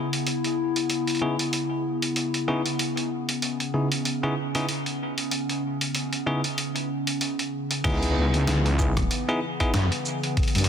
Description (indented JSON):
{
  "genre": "glitch hop",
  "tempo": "95 BPM",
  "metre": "4/4",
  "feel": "swing 57% on 16ths",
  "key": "C# minor",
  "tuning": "A4 = 444 Hz",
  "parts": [
    { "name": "warbly tape-like pad", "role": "sustained chords", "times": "0.0-10.7 s", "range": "C#3 to E4", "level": "-28 LUFS", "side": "left 1 dB", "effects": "chorus, built-in reverb, vintage 12-bit sampler grit, sidechain pumping" },
    { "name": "boom bap sampler-style drum kit", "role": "drums", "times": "0.1-10.7 s", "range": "crash cymbal, hi-hat, rim click, shaker, snare drum", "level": "-28 LUFS", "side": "right 1 dB", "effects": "none" },
    { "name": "bell-like tine electric piano", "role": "stabs", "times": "1.2-9.7 s", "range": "C#3 to G#4", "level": "-29 LUFS", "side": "equal", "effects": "vintage 12-bit sampler grit, sidechain pumping, low-pass filter, dub echo" },
    { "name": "wobble bass", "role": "bass", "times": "7.8-10.7 s", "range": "C#2 to F#2", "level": "-23 LUFS", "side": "equal", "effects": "chorus, overdrive" },
    { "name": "electronic kick drum", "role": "drums", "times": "7.8-10.5 s", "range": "none", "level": "-26 LUFS", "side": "equal", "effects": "none" }
  ],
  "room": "light reverb, digital ambience",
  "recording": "dense, heavily limited modern master",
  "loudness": "-23 LUFS",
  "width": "side -8 dB against mid",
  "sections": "0.0-7.8 A section; 7.8-10.7 B section",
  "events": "drop 7.8-10.7",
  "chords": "0.0 C#m7"
}